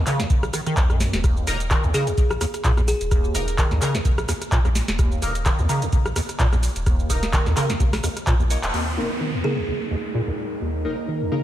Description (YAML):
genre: acid house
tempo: 128 BPM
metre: 4/4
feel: swing 55% on 16ths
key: unclear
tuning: A4 = 440 Hz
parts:
  - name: liquid acid bass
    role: riff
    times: 0.0-11.4 s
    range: Eb1 to Eb3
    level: -26 LUFS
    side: equal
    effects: ensemble chorus, ping-pong delay
  - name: warm sub bass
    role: bass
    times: 0.0-8.7 s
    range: Eb1 to Eb2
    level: -24 LUFS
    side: equal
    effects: sidechain pumping
  - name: booming analog drum machine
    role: drums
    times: 0.1-8.8 s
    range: crash cymbal, handclaps, hi-hat, rim click, shaker, snare drum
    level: -26 LUFS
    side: equal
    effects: none
  - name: electronic kick drum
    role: drums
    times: 0.3-8.4 s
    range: none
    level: -21 LUFS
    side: equal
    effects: none
  - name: band-passed chord stab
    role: stabs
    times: 1.5-11.4 s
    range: Bb3 to Db5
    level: -30 LUFS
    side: left 2 dB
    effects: phaser, ensemble chorus, ping-pong delay
  - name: buzzing kalimba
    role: melody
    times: 1.9-3.5, 9.4-9.8 s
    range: Ab4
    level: -30 LUFS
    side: right 1 dB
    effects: vintage 12-bit sampler grit, tape echo
  - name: downlifter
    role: sound effects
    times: 8.7-11.4 s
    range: none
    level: -30 LUFS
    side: right 1 dB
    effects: none
  - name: deep dark ambient pad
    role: texture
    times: 9.8-11.4 s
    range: Eb4 to Bb5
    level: -32 LUFS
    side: right 1 dB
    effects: chorus, built-in reverb, sidechain pumping
room: light reverb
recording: none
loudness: -19 LUFS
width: side -12 dB against mid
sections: 0.0-8.7 A section; 8.7-11.4 B section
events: drop 0.0-8.7; drum fill 8.3-8.7; band accent 8.6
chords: 0.0 Eb5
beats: 0.30 0.77 | 1.24 1.71 2.18 2.65 | 3.11 3.58 4.05 4.52 | 4.99 5.46 5.93 6.40 | 6.86 7.33 7.80 8.27 | 8.74 9.21 9.68 10.15 | 10.61 11.08